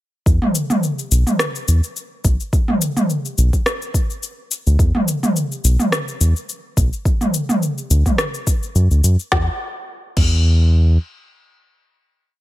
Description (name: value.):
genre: organic downtempo.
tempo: 106 BPM.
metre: 4/4.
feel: swing 55% on 16ths.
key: unclear.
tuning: A4 = 440 Hz.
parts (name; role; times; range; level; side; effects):
round analog bass; bass; 0.3-11.0 s; B1 to F#2; -14 LUFS; equal; sidechain pumping.
electronic kick drum; drums; 0.3-10.3 s; none; -17 LUFS; equal; overdrive.
organic electronic drum kit; drums; 0.3-10.3 s; crash cymbal, rim click, shaker, snare drum, toms; -20 LUFS; equal; overdrive.
room: little or no reverb.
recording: none.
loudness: -16 LUFS.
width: side -15 dB against mid.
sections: 0.3-9.3 groove; 9.3-11.6 final note.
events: none.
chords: none.